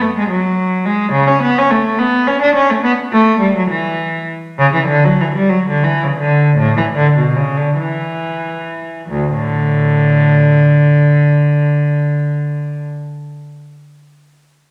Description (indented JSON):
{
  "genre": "classical, baroque-style suite movement for unaccompanied cello",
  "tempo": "41-72 BPM (dotted quarters)",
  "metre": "6/8",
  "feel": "rubato",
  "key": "D major",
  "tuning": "A4 = 440 Hz",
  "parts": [
    { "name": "dark cello", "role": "solo", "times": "0.0-12.9 s", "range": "D2 to D4", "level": "-14 LUFS", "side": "equal", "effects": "none" }
  ],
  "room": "wet recital hall reverb, RT60 1.4 s",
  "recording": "none",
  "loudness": "-14 LUFS",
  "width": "mono",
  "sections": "0.0-9.1 A section; 9.1-14.4 B section",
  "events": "slowing down 3.7-9.1",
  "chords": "none"
}